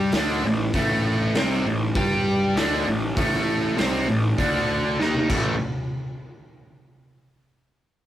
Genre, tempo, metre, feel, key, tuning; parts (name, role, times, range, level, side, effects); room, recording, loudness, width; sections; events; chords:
blues rock power trio and southern rock; 99 BPM; 4/4; straight; A minor; A4 = 440 Hz
biting overdriven guitar; riff; 0.0-5.5 s; A2 to G4; -23 LUFS; equal
fuzz picked electric bass; bass; 0.0-5.6 s; A1 to G2; -26 LUFS; equal; overdrive
raw garage drum kit; drums; 0.1-5.4 s; crash cymbal, hi-hat, kick drum, snare drum, toms; -26 LUFS; equal
moderate small room reverb, RT60 0.5 s; rough rehearsal-room recording, warm saturation; -20 LUFS; side -12 dB against mid
0.0-5.6 A section; 5.6-8.0 B section
drum fill 5.0-5.6
0.0 Am; 5.3 A5; 5.6 N.C.